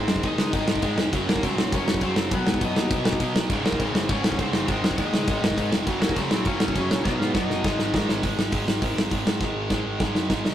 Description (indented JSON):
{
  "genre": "punk rock",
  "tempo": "203 BPM",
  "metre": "4/4",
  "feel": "straight",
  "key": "unclear",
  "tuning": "A4 = 440 Hz",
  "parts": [
    { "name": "overdriven semi-hollow guitar", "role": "melody", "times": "0.0-8.1 s", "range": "Bb3 to F5", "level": "-32 LUFS", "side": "left 2 dB", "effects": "tape echo" },
    { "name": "distorted electric guitar", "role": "riff", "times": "0.0-10.5 s", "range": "Db2 to Cb4", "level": "-30 LUFS", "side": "left 5 dB", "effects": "overdrive" },
    { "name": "tight distorted guitar", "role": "riff", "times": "0.0-10.5 s", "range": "Db2 to Cb4", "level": "-30 LUFS", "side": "right 6 dB", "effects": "distortion" },
    { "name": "fuzz picked electric bass", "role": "bass", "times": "0.0-10.5 s", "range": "Db1 to Cb3", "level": "-31 LUFS", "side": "equal", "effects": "overdrive" },
    { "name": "loose indie drum kit", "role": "drums", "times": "0.1-10.5 s", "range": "crash cymbal, hi-hat, kick drum, snare drum", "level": "-24 LUFS", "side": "equal", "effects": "none" },
    { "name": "distorted electric guitar", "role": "riff", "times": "3.5-8.2 s", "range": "Db2 to Cb4", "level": "-32 LUFS", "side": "equal", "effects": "none" }
  ],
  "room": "light reverb",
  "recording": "rough rehearsal-room recording, tube saturation",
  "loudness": "-21 LUFS",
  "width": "side -11 dB against mid",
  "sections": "0.0-8.2 A section; 8.2-10.5 B section",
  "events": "drum fill 7.1-8.2, 9.4-10.5",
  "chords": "0.0 Ab; 1.1 Gb; 2.3 Cb; 3.5 Db5; 4.7 Ab; 5.9 Gb; 7.1 Cb; 7.6 Ab5"
}